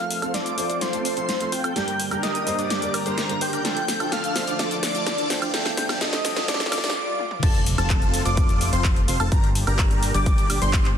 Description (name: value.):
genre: EDM, festival progressive house.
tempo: 127 BPM.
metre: 4/4.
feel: straight.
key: G minor.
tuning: A4 = 440 Hz.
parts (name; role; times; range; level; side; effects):
airy dreamy lead; melody; 0.0-7.2 s; Bb4 to G5; -27 LUFS; equal; chorus, tape echo.
dark baby grand piano; accompaniment; 0.0-6.9 s; G2 to C5; -32 LUFS; right 4 dB; sidechain pumping.
lush unison pad; sustained chords; 0.0-11.0 s; Bb2 to C5; -34 LUFS; left 1 dB; chorus, vintage 12-bit sampler grit, sidechain pumping.
big supersaw lead; riff; 0.0-10.9 s; C4 to D5; -29 LUFS; equal; phaser, sidechain pumping, low-pass filter, tape echo.
riser, swell and impact; sound effects; 1.7-9.3 s; none; -35 LUFS; left 1 dB; none.
big-room dance drum kit; drums; 0.1-10.9 s; crash cymbal, handclaps, hi-hat, shaker, snare drum, toms, woodblock; -27 LUFS; equal; none.
wide unison lead; arpeggios; 7.4-10.9 s; A5 to D6; -28 LUFS; equal; wide subtle chorus, sidechain pumping, tape echo.
fat analog bass; bass; 7.4-10.9 s; F1 to G1; -24 LUFS; equal; sidechain pumping.
electronic kick drum; drums; 7.4-10.8 s; none; -20 LUFS; equal; none.
room: light reverb, digital ambience.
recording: dense, heavily limited modern master, high-pass filter.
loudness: -20 LUFS.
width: side -8 dB against mid.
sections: 0.0-7.4 A section; 7.4-11.0 B section.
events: build-up 0.0-7.4; drum fill 0.0-7.0, 7.2; filter sweep on supersaw synth 0.0-7.4; swell 6.5-7.4; break 7.0-7.4; drop 7.4-11.0; impact 7.4-9.3.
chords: 0.0 F; 1.8 Gm; 3.6 Dm; 5.5 G5; 7.4 F; 9.3 Gm.